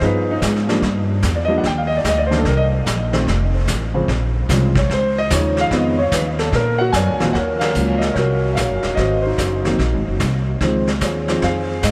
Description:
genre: jazz piano trio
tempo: 148 BPM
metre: 4/4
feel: swing 65% on 8ths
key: Bb minor, Eb dorian from 7.3 s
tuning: A4 = 442 Hz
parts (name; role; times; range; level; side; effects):
- warm grand piano; melody; 0.0-11.9 s; Eb2 to Ab5; -21 LUFS; equal; lush chorus, tape echo
- upright bass; bass; 0.0-11.9 s; Eb1 to Bb2; -22 LUFS; equal; none
- vintage brush drum kit; drums; 0.0-11.9 s; brushed snare drum, hi-hat, kick drum, ride cymbal, snare drum; -26 LUFS; equal; none
room: wet huge ambient reverb, RT60 7.9 s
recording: dreamy mix soaked in reverb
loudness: -18 LUFS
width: mono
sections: 0.0-7.3 A section; 7.3-11.9 B section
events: grand piano solo 0.0-7.3; band accent 7.5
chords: 0.0 Db9 (rootless); 0.8 Ebmaj7; 2.5 Bbsus24; 3.3 F; 4.1 Bbm9; 5.7 Fm7b5; 6.5 Bb7alt; 7.3 Ebm7; 9.0 Ab7; 10.6 Dbmaj9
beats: 0.02 0.43 | 0.83 1.24 1.65 2.05 | 2.46 2.87 3.27 3.68 | 4.09 4.49 4.90 5.30 | 5.71 6.12 6.53 6.93 | 7.34 7.75 8.15 8.56 | 8.97 9.38 9.79 10.20 | 10.60 11.01 11.42 11.83

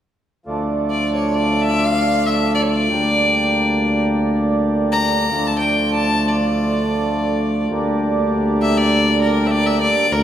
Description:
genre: klezmer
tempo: free time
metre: none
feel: none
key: D minor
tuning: A4 = 440 Hz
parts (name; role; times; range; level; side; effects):
- mellow accordion; accompaniment; 0.5-10.1 s; F3 to D4; -21 LUFS; right 2 dB; none
- mellow tuba; bass; 0.5-10.2 s; D2; -19 LUFS; equal; none
- bright violin; melody; 0.9-10.2 s; Bb4 to Bb5; -20 LUFS; left 3 dB; none
room: wet recital hall reverb, RT60 1.8 s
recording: recorded in a church or concert hall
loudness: -15 LUFS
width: side -10 dB against mid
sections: 0.5-10.1 A section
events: none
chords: 0.5 Dm; 2.9 Gm/D; 5.3 Dm; 7.7 Gm/D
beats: free time

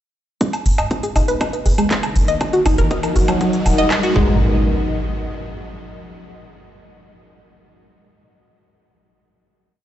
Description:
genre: melodic techno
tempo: 120 BPM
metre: 4/4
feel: straight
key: G# minor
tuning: A4 = 440 Hz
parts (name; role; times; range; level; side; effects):
- dark analog pad; sustained chords; 0.4-4.4 s; G#3 to F#5; -25 LUFS; left 2 dB; chorus, sidechain pumping
- analog pluck; arpeggios; 0.4-4.4 s; F#3 to D#5; -21 LUFS; equal; chorus, phaser, sidechain pumping, tape echo
- electronic kick drum; drums; 0.4-4.3 s; none; -23 LUFS; equal; high-pass filter on kick, small room ambience
- techno drum kit; drums; 0.4-4.1 s; handclaps, hi-hat, woodblock; -25 LUFS; right 1 dB; overdrive, sidechain pumping on hats, high-pass filter on hats, small room ambience, sidechain pumping on perc, high-pass filter on perc, high-pass filter on snare
- riser and impact; sound effects; 2.1-6.2 s; none; -22 LUFS; equal; none
- tight sequencer bass; bass; 0.7-4.4 s; F#1 to G#2; -17 LUFS; equal; sidechain pumping
room: light reverb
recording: played on a big sound system in a bare room, large studio reverb, nothing above 8.0 kHz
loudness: -15 LUFS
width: side -12 dB against mid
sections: 0.4-4.4 build; 4.4-6.4 final hit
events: build-up 0.4-4.4; filter sweep on synth arpeggio sound 0.4-4.4; filter sweep on analog synth pad 0.4-4.4; riser 2.1-4.4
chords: 0.4 G#m; 2.4 D#m/G#; 4.2 G#m; 4.4 N.C.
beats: | 0.41 0.91 1.41 1.91 | 2.41 2.91 3.41 3.91 | 4.41 4.91 5.41 5.91

